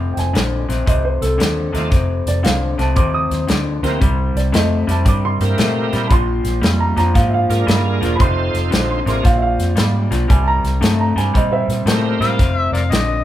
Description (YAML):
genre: electric blues shuffle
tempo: 115 BPM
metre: 4/4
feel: swing 66% on 8ths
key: F mixolydian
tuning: A4 = 440 Hz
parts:
  - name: electric guitar through a small old amp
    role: riff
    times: 0.0-13.2 s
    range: F2 to A3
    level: -21 LUFS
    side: left 2 dB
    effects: none
  - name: vintage muted fingered electric bass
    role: bass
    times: 0.0-13.2 s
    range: E1 to Bb2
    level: -19 LUFS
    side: equal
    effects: none
  - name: dark upright piano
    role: second line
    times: 0.1-12.0 s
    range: A4 to Eb6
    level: -22 LUFS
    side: right 3 dB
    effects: none
  - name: natural country drum kit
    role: drums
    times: 0.2-13.1 s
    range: hi-hat, kick drum, snare drum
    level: -18 LUFS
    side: equal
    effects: none
  - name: bright tonewheel organ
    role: accompaniment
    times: 1.7-12.4 s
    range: A3 to C5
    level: -23 LUFS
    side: right 4 dB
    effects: overdrive, chorus vibrato, slow rotary speaker
  - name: overdriven harmonica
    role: melody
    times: 12.2-13.2 s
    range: Bb4 to F5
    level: -20 LUFS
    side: left 3 dB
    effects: none
room: light reverb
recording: band playing live in one room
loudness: -14 LUFS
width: side -12 dB against mid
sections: 0.0-12.4 A section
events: upright piano solo 0.0-12.4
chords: 0.0 F7; 4.0 C7; 6.1 Bb7; 8.2 F7; 9.3 Bb5; 10.3 C7; 12.4 F7(no3)